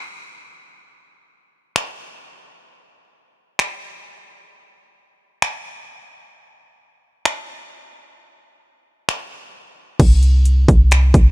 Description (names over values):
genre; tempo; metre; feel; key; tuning
hip hop, atmospheric cloud-rap; free time; none; none; unclear; A4 = 440 Hz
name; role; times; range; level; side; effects
trap drum kit; drums; 1.8-11.2 s; crash cymbal, finger snaps, hi-hat, kick drum; -16 LUFS; equal; vintage 12-bit sampler grit
clean 808-style bass; bass; 10.0-11.3 s; C2; -12 LUFS; equal; none
room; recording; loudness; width
little or no reverb; none; -15 LUFS; side -20 dB against mid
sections
0.0-10.0 A section; 10.0-11.3 B section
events
kick muted 9.1-10.0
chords
none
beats
free time